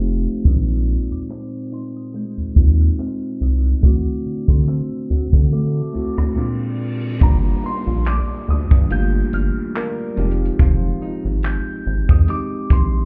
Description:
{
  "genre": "contemporary R&B",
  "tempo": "71 BPM",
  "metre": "4/4",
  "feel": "swing 54% on 16ths",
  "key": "unclear",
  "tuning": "A4 = 440 Hz",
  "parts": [
    { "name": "bell-like tine electric piano", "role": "accompaniment", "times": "0.0-13.1 s", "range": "Bb2 to A5", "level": "-28 LUFS", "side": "equal", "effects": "none" },
    { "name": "picked old ladder-braced acoustic guitar", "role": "arpeggios", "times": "0.0-13.1 s", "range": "Bb2 to Bb4", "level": "-33 LUFS", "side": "equal", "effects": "none" },
    { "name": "rubbery square bass", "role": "bass", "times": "0.0-13.0 s", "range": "F1 to D3", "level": "-20 LUFS", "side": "equal", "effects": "none" },
    { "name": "crisp fusion drum kit", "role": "drums", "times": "0.0-12.9 s", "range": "handclaps, hi-hat, kick drum, rim click", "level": "-18 LUFS", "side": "equal", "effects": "none" },
    { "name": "glassy synth bell", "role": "melody", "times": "0.5-13.1 s", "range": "Bb5 to G6", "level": "-34 LUFS", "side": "equal", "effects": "chorus, tremolo, delay" },
    { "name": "reverse cymbal and downlifter", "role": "sound effects", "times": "6.1-13.1 s", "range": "none", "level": "-40 LUFS", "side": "equal", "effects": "none" }
  ],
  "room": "studio reverb",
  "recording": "heard muffled through a wall, club reverb, EQ, low-pass filter",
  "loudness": "-19 LUFS",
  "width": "mono",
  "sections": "0.0-7.2 A section; 7.2-13.1 B section",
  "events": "tine electric piano fill 0.0-0.5; filter sweep 0.0-7.2; reverse cymbal 6.1-7.2",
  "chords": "0.5 Bb9sus4; 3.8 D7; 6.4 Bb7; 7.2 Gm7; 10.2 Fm9"
}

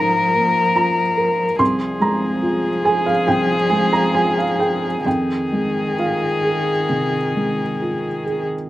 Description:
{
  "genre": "neoclassical piano and strings",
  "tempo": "65-74 BPM",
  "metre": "4/4",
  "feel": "rubato",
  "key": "F minor",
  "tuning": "A4 = 440 Hz",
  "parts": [
    { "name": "muted violin", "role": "melody", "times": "0.0-8.5 s", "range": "Ab4 to Bb4", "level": "-20 LUFS", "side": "left 3 dB", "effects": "slapback echo" },
    { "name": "muted cello", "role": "second line", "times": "0.0-8.4 s", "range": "Eb3 to F3", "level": "-26 LUFS", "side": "right 3 dB", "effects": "slapback echo" },
    { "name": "felt-muted upright piano", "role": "accompaniment", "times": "0.0-8.7 s", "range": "C2 to Db6", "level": "-19 LUFS", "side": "right 1 dB", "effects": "none" }
  ],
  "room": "little or no reverb",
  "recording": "recorded outdoors, with no room sound",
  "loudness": "-16 LUFS",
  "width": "side -15 dB against mid",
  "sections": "0.0-8.7 A section",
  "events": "none",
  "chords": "0.0 Db6; 1.6 Ab6/C; 5.1 Fm7"
}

